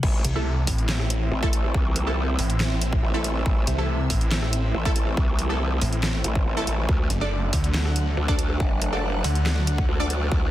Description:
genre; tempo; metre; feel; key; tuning
heavy wobble dubstep; 140 BPM; 4/4; half-time; A dorian; A4 = 440 Hz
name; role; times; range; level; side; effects
supersaw chords; sustained chords; 0.0-10.5 s; E3 to E4; -33 LUFS; right 1 dB; sidechain pumping, low-pass filter
growl bass; bass; 0.0-10.5 s; F#1 to D2; -25 LUFS; equal; distortion, chorus, overdrive
dubstep drum kit; drums; 0.0-10.2 s; crash cymbal, handclaps, hi-hat, rim click, snare drum; -29 LUFS; equal; overdrive
electronic kick drum; drums; 0.0-10.4 s; none; -24 LUFS; equal; overdrive
airy breathy pad; texture; 0.5-10.5 s; C4 to F#5; -34 LUFS; left 1 dB; chorus, phaser, sidechain pumping
snarling distorted saw bass; bass; 0.2-9.9 s; F#1 to D2; -24 LUFS; equal; overdrive
orchestra-hit-like synth stab; stabs; 0.4-10.1 s; A3 to D5; -31 LUFS; right 1 dB; built-in reverb, digital delay
room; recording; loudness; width
digital ambience; dense, heavily limited modern master; -21 LUFS; side -14 dB against mid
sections
0.0-10.5 A section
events
drop 0.0-10.5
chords
0.0 Am; 6.9 D

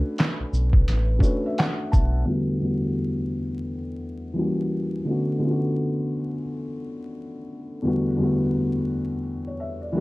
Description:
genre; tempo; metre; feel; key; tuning
lo-fi hip hop; 86 BPM; 4/4; swing 62% on 16ths; E dorian; A4 = 440 Hz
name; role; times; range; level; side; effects
felt-muted upright piano; accompaniment; 0.0-10.0 s; E2 to A5; -24 LUFS; left 1 dB; low-pass filter
sub bass with octave; bass; 0.0-2.2 s; A1 to B1; -22 LUFS; equal; none
lo-fi sampler-style drum kit; drums; 0.2-2.1 s; handclaps, hi-hat, kick drum, shaker, snare drum; -21 LUFS; equal; none
room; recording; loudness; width
moderate studio reverb, RT60 0.6 s; dark, warm production, vinyl crackle; -22 LUFS; side -21 dB against mid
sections
0.0-2.3 A section; 2.3-10.0 B section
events
filter sweep on felt piano 2.3-10.0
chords
0.0 Bm9; 2.3 Em11; 4.4 F#7b9; 5.1 Bm9; 7.8 Em11

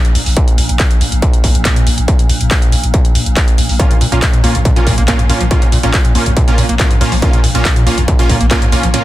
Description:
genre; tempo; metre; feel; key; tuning
driving peak-time techno; 140 BPM; 4/4; straight; Bb minor; A4 = 441 Hz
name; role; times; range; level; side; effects
swarming drone; drone; 0.1-9.0 s; Bb2; -21 LUFS; equal; built-in reverb, sidechain pumping
techno drum kit; drums; 0.0-9.0 s; handclaps, hi-hat; -19 LUFS; equal; sidechain pumping on hats
growling 808-style bass; bass; 0.2-8.9 s; Bb1; -17 LUFS; equal; overdrive, sidechain pumping, low-pass filter
electronic kick drum; drums; 0.4-8.6 s; none; -12 LUFS; equal; distortion
overdriven acid bass; riff; 3.8-9.0 s; Bb1 to Bb3; -19 LUFS; equal; sidechain pumping
supersaw stab; stabs; 3.8-9.0 s; Bb3 to F4; -18 LUFS; right 1 dB; sidechain pumping, dub echo
room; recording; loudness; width
light reverb, digital ambience; dense, heavily limited modern master; -9 LUFS; side -15 dB against mid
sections
0.0-9.0 A section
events
none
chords
0.0 Bbm

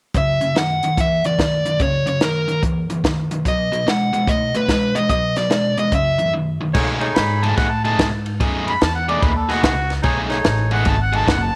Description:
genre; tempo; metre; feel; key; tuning
electric blues shuffle; 146 BPM; 4/4; swing 65% on 8ths; B mixolydian from 6.7 s; A4 = 439 Hz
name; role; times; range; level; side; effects
overdriven electric guitar; riff; 0.1-11.4 s; F#2 to G#4; -24 LUFS; equal; none
compact cocktail drum kit; drums; 0.1-11.4 s; crash cymbal, hi-hat, kick drum, ride cymbal, snare drum; -24 LUFS; equal; none
dark smooth lead guitar; melody; 0.2-6.3 s; A#4 to F#5; -22 LUFS; equal; overdrive
warm saxophone section; stabs; 6.7-7.5, 10.0-10.8 s; D#4 to C#5; -26 LUFS; equal; none
upright bass; bass; 6.8-11.5 s; F#1 to B2; -24 LUFS; equal; none
warm harmonica; second line; 7.2-11.6 s; F#4 to B5; -24 LUFS; equal; overdrive
room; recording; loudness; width
light reverb, small room ambience; none; -19 LUFS; mono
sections
0.1-6.7 A section; 6.7-11.6 B section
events
break 6.3-6.7; harmonica solo 6.7-11.6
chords
0.1 F#7(no3); 3.4 B7; 5.9 F#5; 6.7 B13

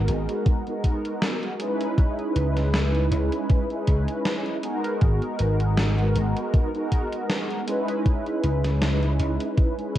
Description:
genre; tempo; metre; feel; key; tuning
vaporwave; 79 BPM; 4/4; swing 55% on 16ths; C# dorian; A4 = 440 Hz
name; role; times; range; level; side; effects
mellow synth brass; accompaniment; 0.0-10.0 s; G#3 to B4; -26 LUFS; right 1 dB; ensemble chorus, vintage 12-bit sampler grit, tape echo
vintage slap bass; bass; 0.0-9.4 s; G#1 to C#2; -22 LUFS; equal; none
gated 80s digital drum machine; drums; 0.1-10.0 s; hi-hat, snare drum; -29 LUFS; equal; gated reverb, gated reverb snare, studio ambience
electronic kick drum; drums; 0.5-10.0 s; none; -20 LUFS; equal; studio ambience
room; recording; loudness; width
light reverb; dark, warm production, cassette tape; -21 LUFS; side -13 dB against mid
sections
0.0-10.0 A section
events
none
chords
0.0 G#m7; 1.6 C#m7; 5.0 G#m7; 7.7 C#m7

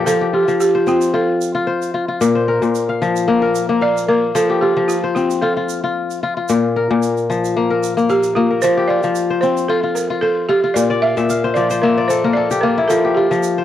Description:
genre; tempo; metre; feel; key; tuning
west african traditional, West African string and xylophone music; 112 BPM; 4/4; swing 53% on 16ths; F major; A4 = 440 Hz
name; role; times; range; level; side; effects
balafon; melody; 0.0-13.6 s; F4 to E5; -18 LUFS; right 3 dB; cassette tape
kora; arpeggios; 0.0-13.6 s; Bb2 to F5; -16 LUFS; left 4 dB; cassette tape
tube shaker; percussion; 0.1-13.6 s; none; -32 LUFS; right 13 dB; none
room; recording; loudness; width
light reverb; home recording on cassette; -14 LUFS; side -11 dB against mid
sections
0.1-13.6 A section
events
kora fill 10.9-12.9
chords
0.1 F; 2.2 Bb5; 4.4 F; 6.5 Bb5; 8.6 F5; 10.8 Bb5; 12.9 N.C.

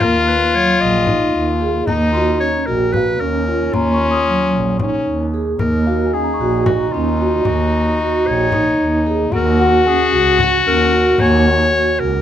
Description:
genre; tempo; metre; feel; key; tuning
contemporary instrumental, chamber music in an uneven meter; 225 BPM (eighths); 7/8; straight; Eb minor; A4 = 439 Hz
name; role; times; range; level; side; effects
bright clarinet; melody; 0.0-12.2 s; Eb4 to Eb5; -20 LUFS; left 2 dB; none
stopped French horn; second line; 0.0-12.2 s; Db4 to Gb4; -18 LUFS; left 4 dB; none
vibraphone with medium mallets; arpeggios; 0.0-12.2 s; Gb3 to Ab4; -19 LUFS; right 2 dB; none
warm double bass; bass; 0.0-12.2 s; Bb1 to Eb2; -20 LUFS; right 3 dB; none
frame drum; percussion; 0.0-11.6 s; none; -23 LUFS; left 3 dB; none
large celesta; texture; 0.0-12.2 s; F5 to Eb6; -26 LUFS; left 4 dB; none
room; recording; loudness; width
light reverb; close, detailed microphones; -13 LUFS; side -10 dB against mid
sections
0.0-5.6 A section; 5.6-12.2 B section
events
none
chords
0.0 Ebm9; 9.3 Gbadd9

